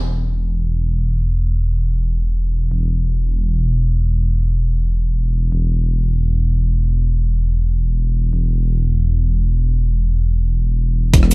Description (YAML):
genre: liquid drum and bass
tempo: free time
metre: none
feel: none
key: unclear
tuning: A4 = 441 Hz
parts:
  - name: dark detuned saw bass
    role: bass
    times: 0.0-11.3 s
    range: E1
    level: -16 LUFS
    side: equal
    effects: none
  - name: breakbeat sampler-style drum kit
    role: drums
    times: 11.1-11.3 s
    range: hi-hat, rim click, shaker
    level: -25 LUFS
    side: right 3 dB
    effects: none
  - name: electronic kick drum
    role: drums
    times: 11.1-11.2 s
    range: none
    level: -11 LUFS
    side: equal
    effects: none
  - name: hi-hat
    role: drums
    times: 11.1-11.3 s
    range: none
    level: -30 LUFS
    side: left 1 dB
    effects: high-pass filter on hats, high-pass filter on snare, high-pass filter on room
room: small room ambience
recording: none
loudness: -16 LUFS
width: side -26 dB against mid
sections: 0.0-11.1 A section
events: none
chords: none